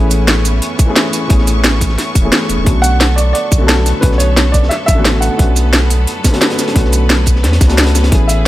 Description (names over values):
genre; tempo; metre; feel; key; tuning
liquid drum and bass; 176 BPM; 4/4; straight; unclear; A4 = 441 Hz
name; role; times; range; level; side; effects
dark baby grand piano; melody; 0.0-0.4, 2.8-5.9, 8.3-8.5 s; A4 to F#5; -19 LUFS; right 2 dB; digital delay
felt-muted upright piano; accompaniment; 0.0-8.5 s; D3 to G#4; -18 LUFS; left 1 dB; dub echo
bright studio string section; sustained chords; 0.0-8.5 s; F#3 to C#6; -23 LUFS; equal; sidechain pumping
warm sub bass; bass; 0.0-8.5 s; E1 to E2; -13 LUFS; equal; tube saturation
crunchy breakbeat drum kit; drums; 0.1-8.4 s; hi-hat, snare drum; -21 LUFS; equal; high-pass filter on hats, high-pass filter on snare, high-pass filter on room
drum and bass drum kit; drums; 0.1-8.4 s; hi-hat, shaker, snare drum; -15 LUFS; equal; none
electronic kick drum; drums; 0.8-8.2 s; none; -12 LUFS; equal; none
room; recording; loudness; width
light reverb, small room ambience; none; -10 LUFS; side -15 dB against mid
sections
0.0-8.5 A section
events
none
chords
0.0 Amaj9; 2.7 Bm9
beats
0.28 0.62 0.96 | 1.30 1.64 1.98 2.33 | 2.67 3.01 3.35 3.69 | 4.03 4.37 4.71 5.05 | 5.39 5.73 6.08 6.42 | 6.76 7.10 7.44 7.78 | 8.12 8.46